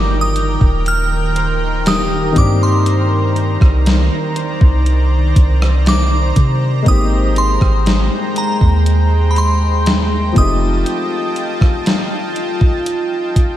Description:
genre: contemporary R&B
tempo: 60 BPM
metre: 4/4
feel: straight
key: unclear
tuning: A4 = 440 Hz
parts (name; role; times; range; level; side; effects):
- glassy synth bell; melody; 0.0-11.8 s; Bb5 to F6; -22 LUFS; equal; chorus, tape echo
- warm grand piano; accompaniment; 0.0-13.6 s; Eb3 to G4; -24 LUFS; left 4 dB; none
- lush unison pad; sustained chords; 0.0-13.6 s; Eb3 to Bb5; -20 LUFS; equal; chorus
- soft 808-style bass; bass; 0.0-10.8 s; Eb1 to C3; -14 LUFS; equal; none
- Celtic harp; texture; 0.0-10.6 s; G4 to G5; -30 LUFS; left 2 dB; none
- gated 80s digital drum machine; drums; 0.4-13.6 s; hi-hat, kick drum, rim click, snare drum; -16 LUFS; equal; gated reverb, gated reverb snare
room: moderate cathedral reverb, RT60 5.1 s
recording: dreamy mix soaked in reverb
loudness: -12 LUFS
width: side -12 dB against mid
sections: 0.0-13.6 A section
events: none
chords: 0.0 Ebmaj7; 2.4 Cm9; 6.9 Abmaj9; 10.4 F9

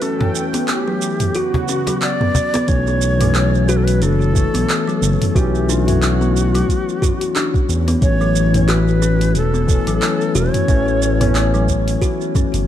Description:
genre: organic downtempo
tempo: 90 BPM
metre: 4/4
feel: swing 57% on 16ths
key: B minor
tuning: A4 = 440 Hz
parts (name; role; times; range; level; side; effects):
- breathy low Native American-style wooden flute; melody; 0.0-11.7 s; F#4 to D5; -22 LUFS; equal; digital delay
- warm analog pad; sustained chords; 0.0-2.7 s; C#3 to G5; -25 LUFS; right 1 dB; chorus, sidechain pumping
- kalimba; arpeggios; 0.0-12.7 s; F#3 to F#4; -23 LUFS; left 1 dB; ping-pong delay
- deep house drum kit; drums; 0.0-12.7 s; handclaps, hi-hat, shaker, toms; -23 LUFS; right 2 dB; none
- cajon; percussion; 0.2-2.7 s; none; -22 LUFS; left 1 dB; none
- bright tine electric piano; accompaniment; 2.7-12.7 s; E3 to C#5; -22 LUFS; left 5 dB; lush chorus, sidechain pumping, ping-pong delay
- smooth gliding synth bass; bass; 2.7-12.6 s; E1 to E2; -17 LUFS; equal; sidechain pumping
- electronic kick drum; drums; 2.7-12.5 s; none; -17 LUFS; equal; none
room: light reverb, digital ambience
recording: dark, warm production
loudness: -14 LUFS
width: side -11 dB against mid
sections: 0.0-2.7 A section; 2.7-12.7 B section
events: break 0.0-2.7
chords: 0.0 A7; 1.4 F#7sus4; 2.7 Bm7; 8.0 F#m7/A; 10.7 A

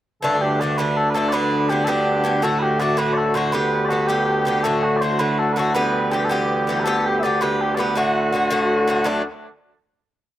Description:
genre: celtic folk, Celtic jig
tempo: 109 BPM (dotted quarters)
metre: 6/8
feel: straight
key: D major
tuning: A4 = 440 Hz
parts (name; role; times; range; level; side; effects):
- mellow small bagpipes; melody; 0.2-9.2 s; D2 to E5; -20 LUFS; right 1 dB; slapback echo
- Irish bouzouki; accompaniment; 0.2-9.2 s; G2 to G4; -21 LUFS; left 1 dB; slapback echo
room: light reverb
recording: recorded outdoors, with no room sound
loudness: -17 LUFS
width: side -13 dB against mid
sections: 0.2-9.1 A section; 9.1-10.2 final chord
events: none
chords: 0.2 Dsus4; 1.3 G; 2.4 D; 3.5 G; 4.6 D; 5.7 Em; 6.8 G; 8.0 D

